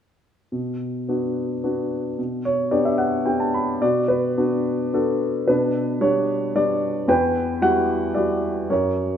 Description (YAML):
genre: classical, lyrical solo piano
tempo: 110 BPM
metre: 3/4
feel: rubato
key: B minor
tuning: A4 = 443 Hz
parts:
  - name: warm upright piano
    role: solo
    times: 0.5-9.2 s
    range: E2 to B5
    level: -20 LUFS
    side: equal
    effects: none
room: moderate recital hall reverb, RT60 1.4 s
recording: minimal, uncompressed stereo recording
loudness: -19 LUFS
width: side -8 dB against mid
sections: 0.5-3.8 A section; 3.8-9.2 B section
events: upright piano fill 2.2-3.8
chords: 0.5 Bm; 2.2 G/B; 3.8 Bm; 5.5 G/B; 7.1 Emadd9